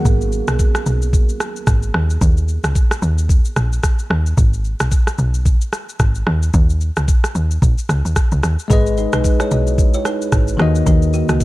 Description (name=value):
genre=afrobeats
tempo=111 BPM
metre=4/4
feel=swing 58% on 16ths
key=G# minor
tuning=A4 = 442 Hz
part: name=bell-like tine electric piano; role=accompaniment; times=0.0-0.1, 8.7-11.4 s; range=D#3 to D#5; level=-20 LUFS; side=left 5 dB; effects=none
part: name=woody log drum bass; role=bass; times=0.1-11.4 s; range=G#1 to D#2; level=-17 LUFS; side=equal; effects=none
part: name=afro-pop drum kit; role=drums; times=0.1-11.4 s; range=kick drum, rim click, shaker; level=-16 LUFS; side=equal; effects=none
part: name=kalimba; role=riff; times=8.7-11.4 s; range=A#3 to D#5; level=-25 LUFS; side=right 6 dB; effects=analog delay
room=little or no reverb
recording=dark, warm production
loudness=-14 LUFS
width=side -18 dB against mid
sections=0.1-11.4 A section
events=none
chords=0.1 G#m; 1.9 D#5; 4.4 G#m; 6.3 D#5; 8.7 G#m; 10.6 D#m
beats=| 0.05 0.59 1.13 1.67 | 2.21 2.75 3.29 3.84 | 4.38 4.92 5.46 6.00 | 6.54 7.08 7.62 8.16 | 8.70 9.24 9.78 10.32 | 10.86 11.40